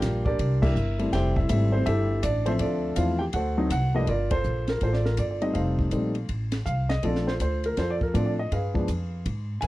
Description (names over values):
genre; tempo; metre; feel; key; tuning
jazz piano trio; 162 BPM; 4/4; swing 64% on 8ths; G minor from 4.1 s; A4 = 440 Hz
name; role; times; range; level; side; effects
warm grand piano; melody; 0.0-9.7 s; G2 to Ab5; -26 LUFS; equal; none
upright bass; bass; 0.0-9.7 s; F1 to A2; -26 LUFS; equal; none
compact cocktail drum kit; drums; 0.0-9.7 s; crash cymbal, hi-hat, kick drum, ride cymbal, snare drum; -32 LUFS; equal; none
room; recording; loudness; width
little or no reverb; dry, close 1970s-style studio recording; -23 LUFS; side -17 dB against mid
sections
0.0-4.1 A section; 4.1-9.7 B section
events
band accent 0.6, 4.3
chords
0.4 C7; 1.1 Fmaj9; 2.6 Dm7; 3.3 D7b9; 4.1 Gm9; 5.5 F7; 7.0 Bbmaj7; 8.5 G7b9